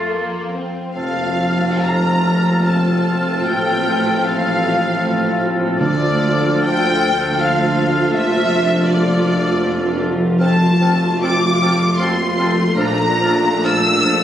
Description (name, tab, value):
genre	classical, slow romantic movement for symphony orchestra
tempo	64-84 BPM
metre	3/4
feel	rubato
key	F major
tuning	A4 = 441 Hz
part	warm symphonic violin section	melody	0.0-14.2 s	F4 to E6	-22 LUFS	left 1 dB	none
part	bright studio violin section	second line	0.0-14.2 s	Bb3 to E6	-24 LUFS	left 1 dB	none
part	warm oboe	second line	0.0-14.2 s	F4 to A4	-25 LUFS	equal	none
part	rich symphonic viola section	accompaniment	0.0-14.2 s	A3 to A4	-23 LUFS	equal	none
part	rich studio cello section	bass	0.0-14.2 s	D2 to Bb2	-23 LUFS	equal	none
part	mellow flute section	second line	1.0-14.1 s	F6	-27 LUFS	left 1 dB	none
part	warm clarinet	second line	1.0-14.2 s	C4 to D4	-29 LUFS	equal	none
part	mellow bassoon	accompaniment	1.0-14.2 s	F3	-27 LUFS	left 2 dB	none
part	mellow French horn section	sustained chords	1.0-14.2 s	C4 to F4	-25 LUFS	left 1 dB	none
part	warm trombone section	sustained chords	1.0-14.2 s	F3 to A3	-27 LUFS	right 1 dB	none
part	rich studio double bass section	bass	1.0-14.2 s	F1 to D2	-24 LUFS	right 2 dB	none
part	warm tuba	bass	1.0-14.2 s	F1 to D2	-25 LUFS	right 2 dB	none
part	timpani	percussion	5.8-7.0 s	D3	-25 LUFS	right 1 dB	none
room	moderate recital hall reverb, RT60 1.3 s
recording	recorded on a phone in the room, club reverb, compression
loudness	-14 LUFS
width	side -10 dB against mid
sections	1.0-14.2 A section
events	none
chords	0.0 F; 3.5 F/A; 5.8 Dm; 8.1 Dm/F; 10.4 F; 12.8 Bbmaj7